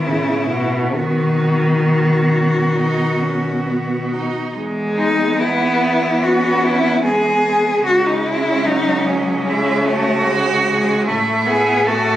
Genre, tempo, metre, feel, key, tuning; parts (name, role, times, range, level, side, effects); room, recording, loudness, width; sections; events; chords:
classical, lyrical piece for cello ensemble; 66-76 BPM; 4/4; rubato; E major; A4 = 443 Hz
rich cello; melody; 0.0-12.2 s; C#4 to A4; -18 LUFS; left 1 dB
rich cello; second line; 0.0-12.2 s; B3 to F#4; -22 LUFS; right 4 dB
warm cello; accompaniment; 0.0-12.2 s; B2 to B3; -19 LUFS; equal
rich cello; bass; 0.0-12.2 s; C#2 to B2; -24 LUFS; right 1 dB
wet recital hall reverb, RT60 1.7 s; recorded on a phone in the room, club reverb, compression; -14 LUFS; side -13 dB against mid
0.0-4.6 A section; 4.6-12.2 B section
0.0 E5; 0.9 B; 4.6 E; 7.8 C#5; 11.1 Amaj7(no3)